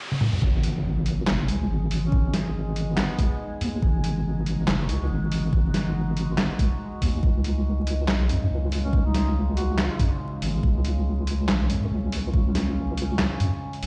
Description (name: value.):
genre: deep dubstep.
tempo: 141 BPM.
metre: 4/4.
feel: swing 56% on 16ths, half-time.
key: unclear.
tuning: A4 = 440 Hz.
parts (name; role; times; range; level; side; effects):
riser and impact; sound effects; 0.0-2.1 s; none; -34 LUFS; equal; none.
trip hop sampler-style drum kit; drums; 0.1-13.9 s; handclaps, hi-hat, snare drum, toms; -30 LUFS; equal; none.
overtone-sweeping drone; sustained chords; 1.5-13.9 s; C#3 to G#4; -37 LUFS; equal; chorus, built-in reverb, phaser.
deep soft wobble bass; bass; 0.4-13.9 s; F#1 to F#2; -27 LUFS; equal; chorus.
electronic kick drum; drums; 0.4-12.4 s; none; -24 LUFS; equal; none.
mellow duduk; melody; 2.0-3.5, 8.8-10.2 s; B3 to F#4; -37 LUFS; equal; dub echo.
room: light reverb.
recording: played on a big sound system in a bare room, large studio reverb, vinyl crackle, nothing above 10.5 kHz.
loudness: -24 LUFS.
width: mono.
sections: 0.4-13.9 A section.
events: break 0.0-0.4; riser 0.0-0.4; drum fill 0.1-0.4; drop 0.4-13.9; impact 0.4-2.1; kick drops out 13.2-13.9.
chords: 0.4 G#5; 7.2 C#5.